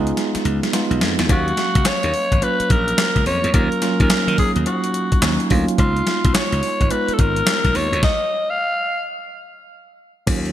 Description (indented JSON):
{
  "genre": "R&B, new jack swing",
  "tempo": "107 BPM",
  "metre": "4/4",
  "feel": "swing 64% on 16ths",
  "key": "Eb minor",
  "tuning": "A4 = 440 Hz",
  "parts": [
    { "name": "mellow tine electric piano", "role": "accompaniment", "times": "0.0-10.5 s", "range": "Gb3 to F5", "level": "-23 LUFS", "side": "right 3 dB", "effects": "medium stereo tremolo" },
    { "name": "glassy slap bass", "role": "bass", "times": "0.0-10.5 s", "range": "Ab1 to Eb3", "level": "-21 LUFS", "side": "equal", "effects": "none" },
    { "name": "crisp 8-bit digital drum machine", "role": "drums", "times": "0.1-10.5 s", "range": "crash cymbal, handclaps, hi-hat, kick drum, snare drum, tambourine", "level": "-20 LUFS", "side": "equal", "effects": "gated reverb" },
    { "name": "growling alto saxophone", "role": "melody", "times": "1.3-9.1 s", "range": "F4 to F5", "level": "-21 LUFS", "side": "left 1 dB", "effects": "digital delay" },
    { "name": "cowbell", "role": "percussion", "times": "1.3-10.4 s", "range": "none", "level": "-35 LUFS", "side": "left 8 dB", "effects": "none" }
  ],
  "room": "light reverb",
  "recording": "bright 1980s-style digital production",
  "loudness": "-16 LUFS",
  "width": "side -12 dB against mid",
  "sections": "0.0-1.3 A section; 1.3-10.3 B section",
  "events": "drum fill 0.2-1.3; stop 8.0-10.3",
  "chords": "0.0 Db7; 1.3 Ebm7; 5.8 Db7 (rootless)"
}